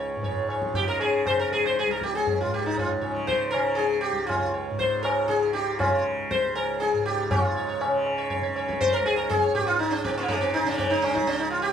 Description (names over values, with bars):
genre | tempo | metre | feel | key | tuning
indian classical, Hindustani | 120 BPM | 4/4 | straight | Db raga yaman | A4 = 440 Hz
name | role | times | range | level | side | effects
sitar | melody | 0.0-11.7 s | Ab3 to Db5 | -25 LUFS | left 1 dB | none
tanpura | drone | 0.0-11.7 s | Db2 to Db3 | -31 LUFS | right 1 dB | none
tabla | percussion | 0.2-11.7 s | none | -28 LUFS | equal | none
room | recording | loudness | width
moderate studio ambience, RT60 0.5 s | band playing live in one room | -22 LUFS | side -8 dB against mid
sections
0.0-7.3 A section; 7.3-11.7 B section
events
speeding up 0.0-11.7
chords
none